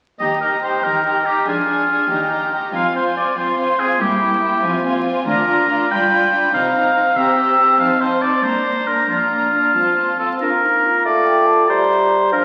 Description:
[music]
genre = quick classical-period movement for symphony orchestra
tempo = 94 BPM (dotted quarters)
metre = 6/8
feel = rubato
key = Eb major, Bb major from 5.3 s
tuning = A4 = 440 Hz
[part]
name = warm chamber violin section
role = melody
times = 0.2-10.4 s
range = G5 to B5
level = -30 LUFS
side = equal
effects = none
[part]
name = clear oboe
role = second line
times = 0.2-12.4 s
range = F4 to G5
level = -19 LUFS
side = equal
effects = none
[part]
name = warm chamber violin section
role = second line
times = 0.2-10.4 s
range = D4 to Ab4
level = -26 LUFS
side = equal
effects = none
[part]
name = dark chamber viola section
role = accompaniment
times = 0.2-10.4 s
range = Bb3 to Eb4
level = -26 LUFS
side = equal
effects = none
[part]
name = dark chamber cello section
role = bass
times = 0.2-10.3 s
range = D2 to C3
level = -33 LUFS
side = equal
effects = none
[part]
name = mellow clarinet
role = second line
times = 10.4-12.4 s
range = D4 to G4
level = -26 LUFS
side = equal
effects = none
[part]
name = mellow hollow silver concert flute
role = second line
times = 10.4-12.4 s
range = F5 to Bb5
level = -24 LUFS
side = equal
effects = none
[part]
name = mellow bassoon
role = accompaniment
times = 10.4-12.4 s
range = F3 to Bb3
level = -22 LUFS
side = equal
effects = none
[sound]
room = wet concert hall reverb, RT60 1.7 s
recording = very old 78 rpm record, vinyl crackle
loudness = -17 LUFS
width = mono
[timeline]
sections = 0.2-10.4 A section; 10.4-12.4 B section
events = none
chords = 0.2 Eb; 1.5 Ddim/F; 2.1 Eb; 2.7 Fm; 4.0 Edim/G; 4.6 Fm; 5.3 Bb/D; 5.9 G7; 6.5 Cm7; 7.8 F7; 8.4 Gm; 9.1 Bb/F; 9.7 F; 10.4 Bb; 11.7 Gm

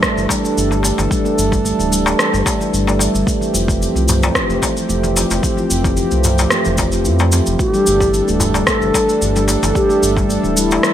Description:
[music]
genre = organic downtempo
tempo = 111 BPM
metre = 4/4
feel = straight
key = unclear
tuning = A4 = 440 Hz
[part]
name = warm analog pad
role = sustained chords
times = 0.0-10.9 s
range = G3 to A4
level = -21 LUFS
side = right 1 dB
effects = chorus, sidechain pumping
[part]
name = handpan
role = arpeggios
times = 0.0-10.9 s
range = E3 to F4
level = -19 LUFS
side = right 1 dB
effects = digital delay
[part]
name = electronic kick drum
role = drums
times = 0.0-10.3 s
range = none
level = -21 LUFS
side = equal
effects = none
[part]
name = electronic rim click and shaker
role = drums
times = 0.0-10.9 s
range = none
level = -20 LUFS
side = equal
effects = none
[part]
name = round analog bass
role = bass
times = 0.2-10.8 s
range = D1 to F2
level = -19 LUFS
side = equal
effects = sidechain pumping
[part]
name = darbuka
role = percussion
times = 0.3-10.8 s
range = none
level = -23 LUFS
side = left 3 dB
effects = none
[part]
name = mellow bass bansuri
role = melody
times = 7.6-10.9 s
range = E4 to A4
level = -17 LUFS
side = left 1 dB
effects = vintage 12-bit sampler grit, digital delay
[sound]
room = light reverb, small room ambience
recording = none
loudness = -13 LUFS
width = side -10 dB against mid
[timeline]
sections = 0.0-10.9 A section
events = none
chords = 0.0 Gsus2; 3.3 Fmaj7; 7.6 Gsus2

